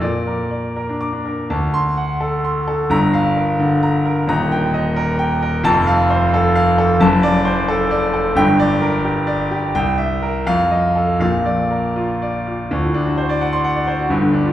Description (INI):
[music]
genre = classical, virtuoso piano study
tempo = 78-90 BPM (dotted quarters)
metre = 6/8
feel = rubato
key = unclear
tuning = A4 = 440 Hz
[part]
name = bright concert grand piano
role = solo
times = 0.0-14.5 s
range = Eb1 to D6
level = -15 LUFS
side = equal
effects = none
[sound]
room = wet recital hall reverb, RT60 1.7 s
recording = heard from further back in the room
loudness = -15 LUFS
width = side -12 dB against mid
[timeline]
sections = 0.0-1.5 A section; 1.5-12.7 B section; 12.7-14.5 B section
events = none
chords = 0.0 Bb; 1.5 D7; 2.9 Gm7; 4.3 Eb; 5.6 F; 7.0 D7/F#; 8.4 Gm; 9.8 C7; 10.5 F7; 11.2 Bb; 12.7 D7